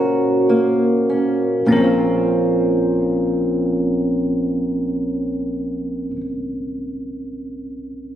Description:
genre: pop.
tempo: 49 BPM.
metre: 4/4.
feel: straight.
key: Bb minor.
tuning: A4 = 440 Hz.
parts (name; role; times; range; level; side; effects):
bell-like tine electric piano; accompaniment; 0.0-8.2 s; Bb1 to C5; -19 LUFS; equal; auto-pan.
fingerpicked old ladder-braced acoustic guitar; arpeggios; 0.0-6.3 s; Bb2 to Gb4; -20 LUFS; right 1 dB; none.
room: moderate lush hall reverb, RT60 2.5 s.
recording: recorded on a phone in the room, studio reverb, compression.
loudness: -17 LUFS.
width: side -10 dB against mid.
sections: 0.0-1.7 A section; 1.7-6.7 B section.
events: slowing down 0.0-1.7.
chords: 0.0 Gb/Bb; 1.7 Bbmadd9.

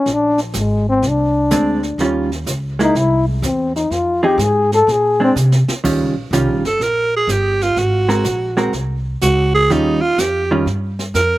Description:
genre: jazz, small-group swing and bop.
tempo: 124 BPM.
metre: 4/4.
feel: swing 67% on 8ths.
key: Eb mixolydian.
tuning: A4 = 440 Hz.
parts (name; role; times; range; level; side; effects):
dark trombone; melody; 0.0-5.3 s; F3 to A4; -15 LUFS; left 2 dB; none.
upright bass; bass; 0.1-11.4 s; G1 to C3; -20 LUFS; equal; none.
jazz brush drum kit; drums; 0.1-11.4 s; brushed snare drum, crash cymbal, hi-hat, kick drum, snare drum; -26 LUFS; right 1 dB; none.
vintage hollow-body jazz guitar; accompaniment; 1.5-10.7 s; Eb3 to Bb4; -18 LUFS; right 2 dB; slapback echo.
growling alto saxophone; second line; 6.7-11.4 s; Eb4 to Bb4; -16 LUFS; right 2 dB; slapback echo.
room: little or no reverb.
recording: recorded outdoors, with no room sound.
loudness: -14 LUFS.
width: side -16 dB against mid.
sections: 0.0-5.9 A section; 5.9-11.4 A section.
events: trombone solo 0.0-5.9; drum fill 5.4-5.9; alto saxophone solo 5.9-11.4.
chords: 0.1 Bb9; 2.0 Eb9; 3.0 C; 3.9 Fm7; 4.9 Bb9; 5.9 Eb9; 7.8 Ab9; 9.7 Eb9.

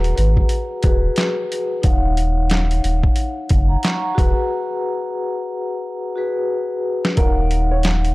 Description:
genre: hip hop, boom-bap hip-hop.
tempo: 90 BPM.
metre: 4/4.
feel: swing 60% on 16ths.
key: Eb minor.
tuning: A4 = 440 Hz.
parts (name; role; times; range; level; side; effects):
vibraphone with soft mallets; accompaniment; 0.0-8.1 s; Eb4 to Db6; -22 LUFS; left 2 dB; high-pass filter, low-pass filter.
warm sub bass; bass; 0.0-8.1 s; Eb1 to Ab1; -18 LUFS; equal; none.
boom bap sampler-style drum kit; drums; 0.0-8.1 s; handclaps, hi-hat, kick drum, snare drum; -18 LUFS; equal; none.
dark upright piano; melody; 0.2-0.3, 7.2-7.8 s; Bb4 to Db5; -28 LUFS; right 3 dB; high-pass filter, low-pass filter, tape echo.
room: small room reverb.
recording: dark, warm production.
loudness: -17 LUFS.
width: side -20 dB against mid.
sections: 0.0-7.2 A section.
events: break 4.5-7.2; drum fill 6.5-7.2.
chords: 0.0 Abm7/Eb; 1.8 Ebm9; 4.2 Abm7/Eb; 7.2 Ebm9.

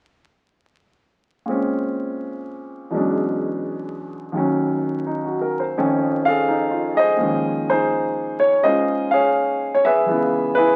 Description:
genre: solo jazz.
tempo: 84 BPM.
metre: 4/4.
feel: swing 66% on 8ths.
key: Bb minor.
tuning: A4 = 440 Hz.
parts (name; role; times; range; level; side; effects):
warm grand piano; solo; 1.5-10.8 s; Db2 to F5; -20 LUFS; equal; none.
room: wet studio reverb, RT60 0.6 s.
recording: very old 78 rpm record, vinyl crackle.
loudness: -21 LUFS.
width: mono.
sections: 1.5-7.2 A section; 7.2-10.8 B section.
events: none.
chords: 1.5 Bbm9; 2.9 E13; 4.3 Ebm7; 5.8 F7alt; 7.2 Bbm11; 10.1 Dbm7.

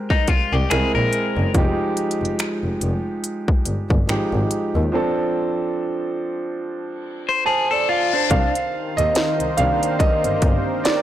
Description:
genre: contemporary R&B.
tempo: 71 BPM.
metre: 4/4.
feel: swing 58% on 16ths.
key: C minor.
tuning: A4 = 440 Hz.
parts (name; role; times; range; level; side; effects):
clear concert grand piano; accompaniment; 0.0-11.0 s; Eb3 to A5; -22 LUFS; right 2 dB; none.
clean electric guitar; arpeggios; 0.1-1.5, 7.3-8.5 s; D4 to C5; -22 LUFS; left 6 dB; lush chorus, tape echo.
trap drum kit; drums; 0.1-11.0 s; finger snaps, hi-hat, kick drum, snare drum; -20 LUFS; equal; soft clipping on snare.
clear double bass; bass; 0.3-10.5 s; F1 to Eb2; -23 LUFS; equal; none.
reverse cymbal; sound effects; 7.4-8.3 s; none; -31 LUFS; left 6 dB; none.
warm analog pad; sustained chords; 8.6-11.0 s; Eb3 to C5; -26 LUFS; left 1 dB; chorus.
room: little or no reverb.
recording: blown-out, overdriven recording, overdrive.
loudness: -18 LUFS.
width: side -12 dB against mid.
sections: 0.0-8.3 A section; 8.3-11.0 B section.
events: reverse cymbal 7.4-8.3; grand piano solo 8.3-11.0.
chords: 0.0 Abmaj9; 0.7 Caug7; 1.5 Fm9; 4.9 Dm7; 8.3 Cm9.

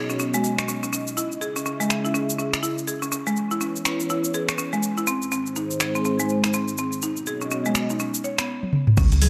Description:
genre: afro house.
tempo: 123 BPM.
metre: 4/4.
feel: swing 60% on 16ths.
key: unclear.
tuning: A4 = 442 Hz.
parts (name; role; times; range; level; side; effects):
dark analog pad; sustained chords; 0.0-9.3 s; G#3 to E5; -31 LUFS; equal; chorus, sidechain pumping.
buzzing marimba with hard mallets; arpeggios; 0.0-9.3 s; G#3 to C#5; -28 LUFS; equal; sidechain pumping, tape echo.
afro-pop drum kit; drums; 0.1-9.3 s; crash cymbal, finger snaps, hi-hat, shaker, toms; -28 LUFS; equal; none.
warm sub bass; bass; 9.0-9.3 s; C#2; -21 LUFS; equal; sidechain pumping.
electronic kick drum; drums; 9.0-9.1 s; none; -22 LUFS; equal; none.
congas; percussion; 9.0-9.3 s; none; -28 LUFS; equal; none.
sub drop; sound effects; 9.0-9.3 s; none; barely audible; none; none.
room: light reverb, digital ambience.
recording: none.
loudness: -24 LUFS.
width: mono.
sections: 0.0-9.0 A section.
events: drum fill 8.6-9.0; impact 9.0-9.3.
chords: 0.0 B; 1.2 C#m; 3.1 E6; 5.1 G#; 7.0 B.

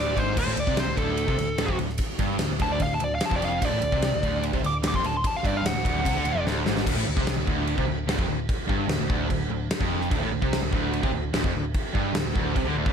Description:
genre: hard rock.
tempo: 148 BPM.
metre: 4/4.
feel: straight.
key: unclear.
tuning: A4 = 440 Hz.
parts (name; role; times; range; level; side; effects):
dark smooth lead guitar; melody; 0.0-6.4 s; A4 to D6; -28 LUFS; left 1 dB; overdrive, analog delay.
sludgy distorted guitar; riff; 0.0-12.9 s; D2 to D3; -33 LUFS; left 10 dB; overdrive.
tight distorted guitar; riff; 0.0-12.9 s; D2 to D3; -32 LUFS; right 12 dB; distortion.
overdriven picked electric bass; bass; 0.0-12.9 s; D1 to D2; -31 LUFS; equal; none.
gated 80s drum kit; drums; 0.2-12.9 s; crash cymbal, kick drum, ride cymbal, snare drum; -27 LUFS; equal; none.
sludgy distorted guitar; riff; 0.4-12.9 s; D2 to D3; -32 LUFS; equal; overdrive.
room: light reverb, small room reverb.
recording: none.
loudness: -23 LUFS.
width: side -7 dB against mid.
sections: 0.0-6.9 A section; 6.9-12.9 B section.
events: lead electric guitar solo 0.0-6.9; drum fill 6.5-6.9.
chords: 0.0 D5.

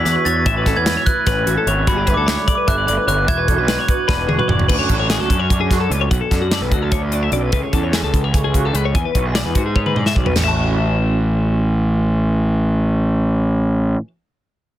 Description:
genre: math rock and midwest emo.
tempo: 296 BPM (eighths).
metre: 7/8.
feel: straight.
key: A major.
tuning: A4 = 439 Hz.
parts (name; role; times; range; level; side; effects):
glockenspiel with soft plastic mallets; melody; 0.0-4.3 s; B5 to B6; -21 LUFS; right 2 dB; digital delay.
electric guitar through a small old amp; accompaniment; 0.0-14.1 s; F#2 to A4; -26 LUFS; right 6 dB; ensemble chorus.
twelve-string electric guitar; arpeggios; 0.0-14.1 s; F#4 to A5; -22 LUFS; left 9 dB; none.
fuzz picked electric bass; bass; 0.0-13.9 s; E1 to G#2; -18 LUFS; equal; overdrive.
modern studio drum kit; drums; 0.1-10.5 s; crash cymbal, hi-hat, kick drum, snare drum, toms; -19 LUFS; equal; none.
room: little or no reverb.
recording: dense, heavily limited modern master.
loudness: -15 LUFS.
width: side -12 dB against mid.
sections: 0.0-4.7 A section; 4.7-10.4 B section; 10.4-13.2 C section.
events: drum fill 4.1-4.7, 9.8-10.4.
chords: 0.5 A69; 1.9 Gmaj9; 3.3 E9; 4.7 Dmaj7; 6.1 Bm7; 7.5 Amaj7/C#; 8.9 E7; 10.4 A6.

